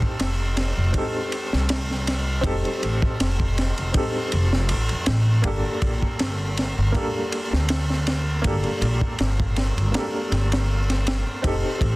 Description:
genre	trip hop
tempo	80 BPM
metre	4/4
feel	swing 54% on 16ths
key	G minor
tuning	A4 = 440 Hz
part	felt-muted upright piano	accompaniment	0.0-12.0 s	Bb3 to A4	-28 LUFS	equal	tremolo, tape echo
part	crunchy breakbeat drum kit	drums	0.0-12.0 s	kick drum, ride cymbal, snare drum	-25 LUFS	equal	none
part	upright bass	bass	0.2-12.0 s	F1 to F2	-23 LUFS	equal	none
room	studio reverb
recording	dense, heavily limited modern master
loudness	-20 LUFS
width	side -21 dB against mid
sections	0.0-12.0 A section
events	none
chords	0.0 F7; 5.4 Gmadd9; 11.4 F7

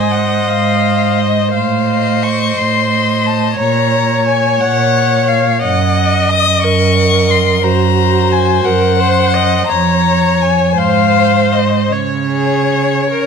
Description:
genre	classical, slow romantic movement for string quartet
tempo	49-61 BPM (dotted quarters)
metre	6/8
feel	rubato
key	unclear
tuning	A4 = 440 Hz
part	rich violin	melody	0.0-13.3 s	Db5 to Eb6	-16 LUFS	left 11 dB	none
part	clear violin	second line	0.0-13.3 s	Ab4 to Eb5	-19 LUFS	left 6 dB	none
part	rich viola	accompaniment	0.0-13.3 s	Gb4 to Eb5	-17 LUFS	right 2 dB	none
part	rich cello	bass	0.0-13.3 s	F2 to Db3	-15 LUFS	right 6 dB	none
room	light reverb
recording	close, detailed microphones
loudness	-10 LUFS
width	side -6 dB against mid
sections	0.0-13.3 A section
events	none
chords	0.0 Ab; 1.5 F7/A; 3.6 Bbm; 5.6 Ebm/Gb; 7.6 Ab9/Gb (rootless); 9.7 Db/F; 10.8 Ab; 11.9 Db5

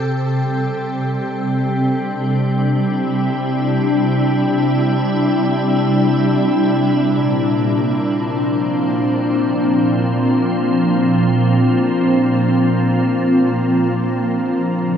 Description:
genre	ambient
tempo	free time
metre	none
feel	none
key	Bb lydian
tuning	A4 = 441 Hz
part	soft additive organ-like pad	sustained chords	0.0-15.0 s	Bb2 to A4	-15 LUFS	equal	ensemble chorus, built-in reverb, shimmer reverb
part	glass harmonica	texture	0.0-15.0 s	G5 to Bb5	-31 LUFS	left 3 dB	shimmer reverb
room	wet cathedral reverb, RT60 6.3 s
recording	dark, warm production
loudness	-14 LUFS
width	side -8 dB against mid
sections	0.0-7.0 A section; 7.0-15.0 B section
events	none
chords	0.0 Cadd9; 7.0 Bb

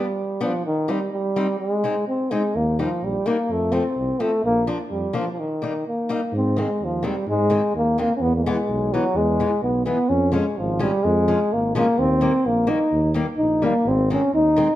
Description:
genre	alpine folk, alpine dance band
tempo	127 BPM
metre	2/4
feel	straight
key	Eb major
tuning	A4 = 440 Hz
part	warm euphonium	melody	0.0-14.8 s	Eb3 to Eb4	-20 LUFS	equal	none
part	picked old ladder-braced acoustic guitar	accompaniment	0.0-14.7 s	Eb3 to Eb4	-28 LUFS	left 3 dB	none
part	mellow tuba	bass	2.6-14.6 s	Ab1 to Ab2	-25 LUFS	right 1 dB	none
room	moderate recital hall reverb, RT60 1.4 s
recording	none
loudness	-19 LUFS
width	side -14 dB against mid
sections	0.0-6.3 A section; 6.3-14.8 B section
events	break 5.4-6.3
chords	0.0 G; 0.6 Cm; 1.6 Ab; 2.5 Eb; 3.5 F; 4.4 Bb; 5.4 Eb; 6.3 Ab; 8.2 E; 10.1 Db; 12.0 Eb; 13.9 Ab

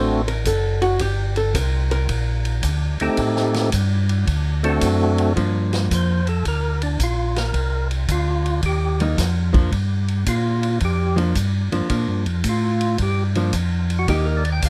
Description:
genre	soul jazz organ trio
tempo	110 BPM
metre	4/4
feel	swing 67% on 8ths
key	G minor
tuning	A4 = 439 Hz
part	percussive tonewheel organ	melody	0.0-14.7 s	A3 to G5	-25 LUFS	equal	slow rotary speaker, overdrive
part	archtop guitar, miked and amplified	accompaniment	0.0-14.4 s	F3 to C5	-26 LUFS	equal	none
part	tonewheel organ	bass	0.0-14.7 s	F#1 to Bb2	-23 LUFS	equal	overdrive, chorus vibrato
part	vintage drum kit	drums	0.3-14.7 s	hi-hat, kick drum, ride cymbal, snare drum	-29 LUFS	equal	none
room	light reverb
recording	close, detailed microphones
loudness	-21 LUFS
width	mono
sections	0.0-5.4 A section; 5.4-14.7 A section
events	hollow-body jazz guitar solo 0.0-5.4; tonewheel organ solo 5.4-14.7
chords	0.0 D7; 1.0 Gm; 3.2 Am7b5; 4.3 D7; 5.4 Gm7; 7.5 Cm7; 9.7 Gm7; 14.1 Cm7 (rootless)

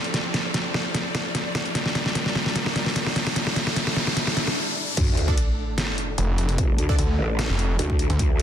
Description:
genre	heavy wobble dubstep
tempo	149 BPM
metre	4/4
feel	half-time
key	D minor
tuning	A4 = 440 Hz
part	warm studio string section	sustained chords	0.0-8.4 s	A2 to D5	-33 LUFS	left 1 dB	sidechain pumping, low-pass filter
part	dubstep drum kit	drums	0.0-8.4 s	crash cymbal, hi-hat, snare drum	-24 LUFS	equal	none
part	riser, swell and sub drop	sound effects	0.3-6.6 s	none	-30 LUFS	equal	none
part	growl bass	bass	5.0-8.4 s	F1 to D2	-25 LUFS	equal	chorus, overdrive
part	electronic kick drum	drums	5.0-8.3 s	none	-22 LUFS	equal	none
part	supersaw stab	stabs	5.3-7.0 s	D4 to D5	-35 LUFS	right 2 dB	wide subtle chorus, ping-pong delay
part	snarling distorted saw bass	bass	6.2-8.2 s	F1 to D2	-22 LUFS	equal	distortion, overdrive
room	light reverb, digital ambience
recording	dense, heavily limited modern master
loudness	-21 LUFS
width	side -10 dB against mid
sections	0.0-5.0 A section; 5.0-8.4 B section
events	build-up 0.0-5.0; drum fill 0.0-4.6; riser 0.3-5.0; swell 4.2-5.0; break 4.6-5.0; drop 5.0-8.4; impact 5.0-6.6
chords	0.0 F6; 1.8 Gm; 3.4 A7sus4; 5.0 D5

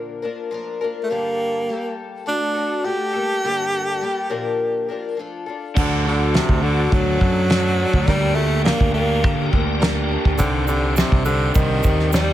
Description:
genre	folk rock and heartland rock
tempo	103 BPM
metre	4/4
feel	straight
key	G minor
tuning	A4 = 439 Hz
part	picked twelve-string acoustic guitar	accompaniment	0.0-12.3 s	G2 to Bb4	-27 LUFS	left 4 dB	plate reverb
part	breathy tenor saxophone	melody	1.0-12.3 s	C3 to G4	-22 LUFS	right 1 dB	plate reverb
part	warm baby grand piano	accompaniment	5.7-12.3 s	D4 to C5	-32 LUFS	right 2 dB	none
part	raw garage guitar	riff	5.7-12.3 s	C3 to G4	-25 LUFS	equal	overdrive
part	tonewheel organ	sustained chords	5.8-12.3 s	A3 to D5	-34 LUFS	right 1 dB	slow rotary speaker, chorus vibrato, plate reverb
part	picked electric bass	bass	5.8-12.3 s	C2 to D3	-21 LUFS	equal	none
part	soft brush drum kit	drums	5.8-12.3 s	crash cymbal, hi-hat, kick drum, snare drum	-20 LUFS	equal	none
part	egg shaker	percussion	10.4-12.3 s	none	-33 LUFS	right 14 dB	none
room	light reverb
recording	none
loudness	-17 LUFS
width	side -12 dB against mid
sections	0.0-5.8 A section; 5.8-12.3 B section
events	none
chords	0.0 Bb; 1.1 Gmadd9; 2.3 D; 3.1 Gmadd9; 4.3 Bb; 5.2 Dm; 5.8 D; 8.1 Gm/D; 10.4 Cmadd9

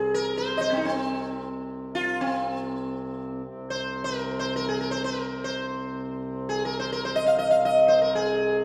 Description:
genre	indian classical, Hindustani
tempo	free time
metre	none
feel	none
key	C raga malkauns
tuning	A4 = 439 Hz
part	sitar	melody	0.0-8.6 s	C4 to F5	-27 LUFS	equal	none
part	hand-pumped harmonium	drone	0.0-8.6 s	C2 to C3	-35 LUFS	equal	none
room	wet recital hall reverb, RT60 1.7 s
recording	recorded in a church or concert hall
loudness	-27 LUFS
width	mono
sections	0.0-3.4 A section; 3.4-8.6 A section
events	none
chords	none

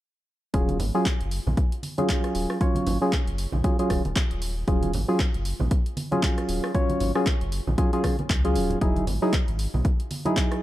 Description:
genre	deep house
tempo	116 BPM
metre	4/4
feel	swing 58% on 16ths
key	Eb minor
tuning	A4 = 440 Hz
part	percussive organ stab	stabs	0.5-10.6 s	Gb3 to Db5	-26 LUFS	equal	chorus, sidechain pumping, tape echo
part	warm sub bass	bass	0.5-9.8 s	Eb1 to Db2	-28 LUFS	equal	tube saturation, sidechain pumping
part	electronic kick drum	drums	0.5-10.5 s	none	-24 LUFS	equal	none
part	punchy analog drum machine	drums	0.5-10.6 s	handclaps, hi-hat, rim click	-33 LUFS	equal	none
part	congas	percussion	0.7-10.3 s	none	-32 LUFS	right 2 dB	none
room	light reverb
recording	none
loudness	-22 LUFS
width	side -14 dB against mid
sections	0.5-10.6 A section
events	none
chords	0.5 Ebm11; 8.8 Emaj9

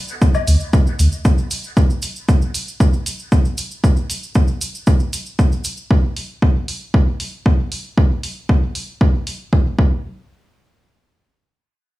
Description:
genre	dub techno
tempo	116 BPM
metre	4/4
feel	straight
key	unclear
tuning	A4 = 445 Hz
part	cabasa	percussion	0.1-5.9 s	none	-30 LUFS	right 1 dB	none
part	electronic kick drum	drums	0.2-9.9 s	none	-14 LUFS	equal	none
part	warm sub bass	bass	0.5-1.1 s	D2	-12 LUFS	equal	sidechain pumping
part	electronic hi-hat	drums	0.5-9.4 s	none	-28 LUFS	right 1 dB	none
room	digital ambience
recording	studio reverb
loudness	-15 LUFS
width	side -17 dB against mid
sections	0.0-10.0 A section; 10.0-12.0 B section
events	none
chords	none

